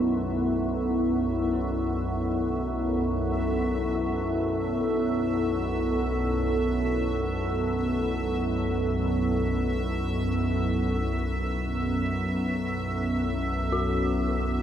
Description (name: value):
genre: dark ambient drone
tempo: free time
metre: none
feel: none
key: unclear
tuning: A4 = 441 Hz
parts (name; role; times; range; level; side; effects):
- deep dark ambient pad; sustained chords; 0.0-14.6 s; B3 to D5; -28 LUFS; right 1 dB; chorus, built-in reverb
- dark detuned synth bell; arpeggios; 0.0-14.6 s; E4 to F#4; -36 LUFS; left 4 dB; chorus, diffuse ambient delay
- organ-like drone; drone; 0.0-14.6 s; B1 to F#2; -28 LUFS; equal; ensemble chorus, built-in reverb
- bubbling stepped-filter texture; texture; 0.0-14.6 s; E5; -36 LUFS; right 1 dB; chorus, built-in reverb
room: wet huge ambient reverb, RT60 9.0 s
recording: dreamy mix soaked in reverb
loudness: -24 LUFS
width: side -9 dB against mid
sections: 0.0-14.6 A section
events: fade-in on synth texture 0.0-14.6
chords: 0.0 D69/B